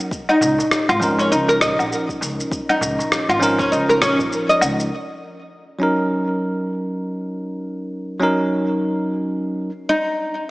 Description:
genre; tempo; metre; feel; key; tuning
organic downtempo; 100 BPM; 4/4; swing 59% on 16ths; Eb minor; A4 = 440 Hz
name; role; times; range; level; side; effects
bell-like tine electric piano; accompaniment; 0.0-9.7 s; F3 to Bb4; -21 LUFS; right 1 dB; sidechain pumping, digital delay
electronic shaker, woodblock and rim click; drums; 0.0-4.9 s; none; -22 LUFS; equal; low-pass filter on perc, low-pass filter on snare, low-pass filter on room
electronic kick drum; drums; 0.1-4.3 s; none; -31 LUFS; equal; none
oud; arpeggios; 0.3-4.6, 9.9-10.5 s; Db4 to Eb5; -19 LUFS; equal; digital delay
upright bass; bass; 0.4-4.9 s; Ab1 to Db2; -27 LUFS; equal; tube saturation, sidechain pumping
darbuka; percussion; 0.4-4.2 s; none; -34 LUFS; right 1 dB; none
room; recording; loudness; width
moderate lush hall reverb, RT60 2.5 s; small speaker sound; -17 LUFS; side -20 dB against mid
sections
0.0-4.9 A section; 4.9-10.5 B section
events
none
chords
0.1 Db69; 4.9 Ebm7; 9.7 N.C.

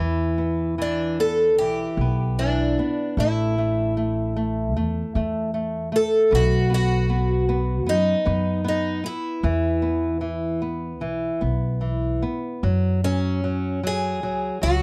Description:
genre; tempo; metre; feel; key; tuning
fado-style ballad; 76 BPM; 4/4; rubato; E minor; A4 = 441 Hz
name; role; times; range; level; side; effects
flamenco guitar; accompaniment; 0.0-14.8 s; E3 to B3; -29 LUFS; equal; none
upright bass; bass; 0.0-14.8 s; A1 to F#2; -26 LUFS; equal; none
picked twelve-string acoustic guitar; melody; 0.8-14.8 s; C#4 to A4; -26 LUFS; equal; none
room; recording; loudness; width
light reverb; dry, close 1970s-style studio recording; -23 LUFS; mono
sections
0.0-14.8 A section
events
none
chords
0.0 Em7; 3.2 A5; 6.3 B; 9.4 E5; 12.6 F#5

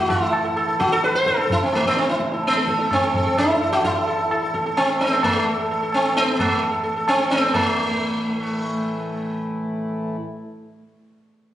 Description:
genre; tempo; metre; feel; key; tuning
indian classical, Hindustani; 129 BPM; 4/4; straight; unclear; A4 = 440 Hz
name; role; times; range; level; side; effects
sitar; melody; 0.0-10.8 s; A3 to C5; -20 LUFS; equal; none
pedal harmonium; drone; 0.0-10.2 s; A2 to E3; -29 LUFS; equal; none
tabla; percussion; 0.1-7.7 s; none; -26 LUFS; right 1 dB; none
room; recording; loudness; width
wet recital hall reverb, RT60 1.4 s; recorded on a phone in the room, studio reverb, compression; -18 LUFS; side -12 dB against mid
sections
0.0-7.5 A section; 7.5-9.4 B section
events
speeding up 0.0-9.4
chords
none

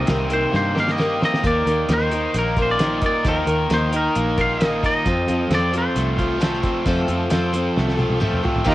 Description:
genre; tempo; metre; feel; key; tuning
folk rock and heartland rock; 133 BPM; 4/4; straight; unclear; A4 = 440 Hz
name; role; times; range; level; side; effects
twangy electric guitar; melody; 0.0-8.2 s; Bb4 to F5; -24 LUFS; left 1 dB; tape echo
picked acoustic archtop guitar; accompaniment; 0.0-8.7 s; C3 to Bb4; -24 LUFS; left 1 dB; cassette tape
crunchy overdriven guitar; riff; 0.0-8.7 s; F2 to G4; -24 LUFS; equal; cassette tape
fingered electric bass; bass; 0.0-8.7 s; Bb1 to G2; -25 LUFS; equal; none
cloth-damped thuddy drum kit; drums; 0.1-8.7 s; crash cymbal, hi-hat, kick drum, snare drum, toms; -24 LUFS; equal; cassette tape
accordion; sustained chords; 8.7 s; Eb4 to Bb4; -18 LUFS; right 3 dB; cassette tape
room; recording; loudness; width
light reverb, small room ambience; home recording on cassette; -17 LUFS; side -16 dB against mid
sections
0.0-8.7 A section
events
drum fill 0.5-1.4, 7.8-8.7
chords
0.0 Cm7; 1.4 Ebsus2; 5.1 F

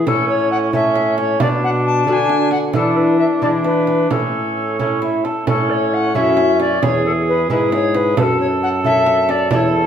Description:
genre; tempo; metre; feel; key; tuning
classical, renaissance-style consort dance; 89 BPM (dotted quarters); 6/8; straight; A major; A4 = 440 Hz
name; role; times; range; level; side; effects
mellow cor anglais; second line; 0.0-9.9 s; C#4 to A4; -21 LUFS; right 3 dB; none
lute; accompaniment; 0.0-9.9 s; E2 to A4; -21 LUFS; left 1 dB; none
warm trombone; bass; 0.0-9.9 s; E2 to E3; -21 LUFS; equal; none
tenor recorder; melody; 0.1-9.9 s; A4 to A5; -19 LUFS; left 3 dB; none
frame drum; percussion; 0.1-9.7 s; none; -23 LUFS; right 3 dB; none
room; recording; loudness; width
wet stone room reverb, RT60 1.3 s; heard from further back in the room; -14 LUFS; side -8 dB against mid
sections
0.0-5.5 A section; 5.5-9.9 A section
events
none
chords
0.1 A; 1.4 Bm; 2.7 E5; 3.4 E7; 4.1 A; 6.8 E; 8.2 F#m

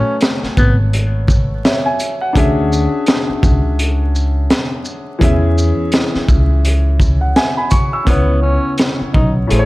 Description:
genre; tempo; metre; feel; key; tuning
hip hop, boom-bap hip-hop; 84 BPM; 4/4; swing 60% on 16ths; unclear; A4 = 441 Hz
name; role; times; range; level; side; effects
breathy tenor saxophone; melody; 0.0-0.8, 8.1-9.3 s; B3 to D#4; -21 LUFS; equal; high-pass filter, low-pass filter, ping-pong delay
dark baby grand piano; accompaniment; 0.0-9.7 s; A2 to E6; -19 LUFS; left 1 dB; cassette tape, high-pass filter, low-pass filter
crunchy breakbeat drum kit; drums; 0.2-9.7 s; hi-hat, kick drum, shaker, snare drum; -15 LUFS; equal; none
upright bass; bass; 0.4-9.7 s; G#1 to E2; -15 LUFS; equal; none
room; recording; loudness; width
studio ambience; dark, warm production, vinyl crackle; -12 LUFS; side -19 dB against mid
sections
0.0-8.1 A section; 8.1-9.7 B section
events
none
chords
0.0 A69; 2.4 Dmaj9#11; 5.2 E6; 8.1 C#m7

